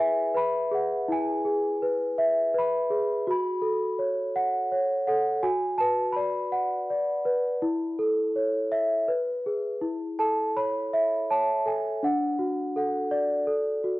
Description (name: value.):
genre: children's music, lullaby.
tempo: 82 BPM.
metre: 3/4.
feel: straight.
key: A major.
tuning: A4 = 438 Hz.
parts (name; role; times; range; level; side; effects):
celesta; solo; 0.0-14.0 s; D4 to B5; -24 LUFS; equal; cassette tape.
room: moderate spring reverb, RT60 2.4 s.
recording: home recording on cassette.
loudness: -24 LUFS.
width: side -19 dB against mid.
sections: 0.0-9.8 A section; 9.8-14.0 B section.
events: none.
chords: 0.0 E; 3.3 F#m; 5.4 Bm/F#; 7.6 A/E; 9.1 G#m; 9.8 A; 12.0 D.